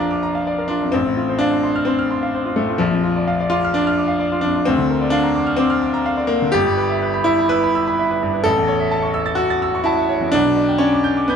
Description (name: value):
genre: classical, virtuoso piano study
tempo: 128 BPM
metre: 4/4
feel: rubato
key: Bb major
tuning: A4 = 440 Hz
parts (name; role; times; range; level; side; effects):
- bright baby grand piano; solo; 0.0-11.4 s; G1 to A6; -16 LUFS; equal; none
room: light reverb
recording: dark, warm production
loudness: -16 LUFS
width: side -7 dB against mid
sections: 0.0-11.4 A section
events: none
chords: 0.0 Bb; 0.9 F/A; 2.8 Bb; 4.7 Bb/D; 6.5 Em/G; 8.4 A; 10.3 G/B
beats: 0.47 | 0.94 1.41 1.88 2.34 | 2.81 3.27 3.74 4.20 | 4.66 5.12 5.59 6.05 | 6.54 7.01 7.50 7.98 | 8.45 8.92 9.39 9.87 | 10.34 10.82 11.30